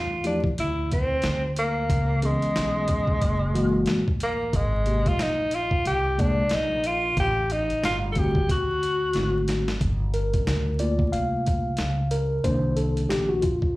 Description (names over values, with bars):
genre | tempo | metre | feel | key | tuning
hip hop, jazz-hop | 91 BPM | 4/4 | swing 59% on 16ths | unclear | A4 = 440 Hz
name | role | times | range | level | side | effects
mellow tenor saxophone | melody | 0.0-9.4 s | Ab3 to A4 | -25 LUFS | equal | slapback echo
upright bass | bass | 0.0-13.7 s | F#1 to E2 | -28 LUFS | equal | none
mellow tine electric piano | accompaniment | 0.2-13.8 s | C3 to F5 | -26 LUFS | left 1 dB | medium stereo tremolo, slapback echo
boom bap sampler-style drum kit | drums | 0.2-13.8 s | hi-hat, kick drum, snare drum | -27 LUFS | equal | none
room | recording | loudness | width
light reverb | live gig heard through the venue's PA, club reverb, vinyl crackle | -22 LUFS | side -19 dB against mid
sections
0.0-9.8 A section; 9.8-13.8 B section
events
drum fill 9.1-9.8; tine electric piano solo 9.8-13.8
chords
0.0 Fmaj9; 1.9 C#m7; 3.2 F#9; 4.5 Abadd9; 7.2 F13 (rootless); 8.5 D7; 9.8 Gm9; 12.4 Cm7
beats
0.58 1.24 | 1.89 2.55 3.21 3.87 | 4.53 5.19 5.85 6.51 | 7.17 7.83 8.49 9.15 | 9.81 10.47 11.12 11.78 | 12.44 13.10 13.76